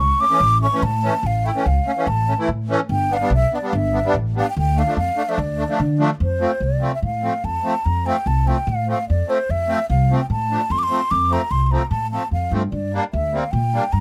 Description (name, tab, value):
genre	klezmer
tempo	146 BPM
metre	4/4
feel	straight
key	D harmonic minor, F major from 6.2 s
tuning	A4 = 442 Hz
part	mellow hollow concert flute	melody	0.0-14.0 s	C5 to D6	-24 LUFS	equal	none
part	upright bass	bass	0.0-14.0 s	G1 to D3	-23 LUFS	equal	none
part	musette accordion	accompaniment	0.2-13.8 s	E3 to E4	-25 LUFS	equal	none
room	little or no reverb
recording	close, detailed microphones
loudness	-20 LUFS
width	mono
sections	0.0-6.2 A section; 6.2-14.0 B section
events	speeding up 0.0-14.0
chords	0.0 A; 2.9 G; 4.6 Dm; 6.2 F; 12.7 Gm